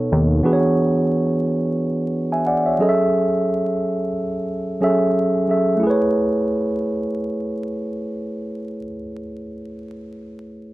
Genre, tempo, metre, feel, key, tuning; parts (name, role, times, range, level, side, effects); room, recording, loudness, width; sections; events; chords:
R&B; 89 BPM; 4/4; swing 56% on 16ths; A major; A4 = 440 Hz
mellow tine electric piano; accompaniment; 0.0-10.7 s; B2 to G#5; -19 LUFS; right 1 dB
moderate studio reverb, RT60 0.8 s; vinyl crackle; -18 LUFS; side -18 dB against mid
0.0-5.8 A section; 5.8-8.5 B section
0.4 E13; 2.8 F#m9; 5.8 Amaj9